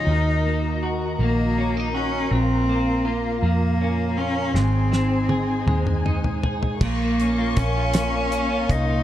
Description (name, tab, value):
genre	six-eight pop ballad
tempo	53 BPM (dotted quarters)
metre	6/8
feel	straight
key	unclear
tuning	A4 = 440 Hz
part	bright cello	melody	0.0-9.0 s	Bb3 to Eb4	-24 LUFS	equal	none
part	clean electric guitar	accompaniment	0.0-9.0 s	Ab2 to Ab4	-27 LUFS	equal	double-tracked left and right
part	dark symphonic string section	sustained chords	0.0-9.0 s	Bb3 to Db6	-30 LUFS	left 2 dB	none
part	vintage muted fingered electric bass	bass	0.0-9.0 s	Ab1 to F2	-24 LUFS	equal	none
part	damped 70s drum kit	drums	4.6-8.9 s	crash cymbal, hi-hat, kick drum, snare drum, toms	-25 LUFS	equal	none
room	light reverb, studio ambience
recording	dark, warm production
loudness	-19 LUFS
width	side -12 dB against mid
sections	0.0-6.8 A section; 6.8-9.0 B section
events	drum fill 4.5-6.8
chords	0.1 Ebm; 2.3 Bbm; 4.5 Ab; 6.8 Bbm